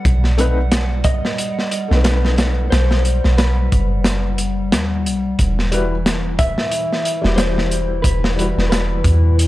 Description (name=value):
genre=trip hop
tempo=90 BPM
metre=4/4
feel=swing 58% on 16ths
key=E harmonic minor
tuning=A4 = 440 Hz
part: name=felt-muted upright piano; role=accompaniment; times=0.0-9.5 s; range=G3 to B4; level=-24 LUFS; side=left 2 dB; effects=tremolo, vintage 12-bit sampler grit
part: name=warbly tape-like pad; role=sustained chords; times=0.0-9.5 s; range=E3 to F#5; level=-26 LUFS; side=left 2 dB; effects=chorus, built-in reverb
part: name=soft 808-style bass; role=bass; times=0.1-9.5 s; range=E1 to E2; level=-17 LUFS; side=equal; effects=none
part: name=crunchy breakbeat drum kit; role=drums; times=0.1-9.5 s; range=hi-hat, kick drum, snare drum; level=-19 LUFS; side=equal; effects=none
part: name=mellow electric guitar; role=melody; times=1.0-9.5 s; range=B4 to E5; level=-24 LUFS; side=left 1 dB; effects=spring reverb, tape echo
room=small room ambience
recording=dark, warm production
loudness=-15 LUFS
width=side -16 dB against mid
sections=0.0-9.5 A section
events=none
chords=0.0 B7b9; 5.4 Emadd9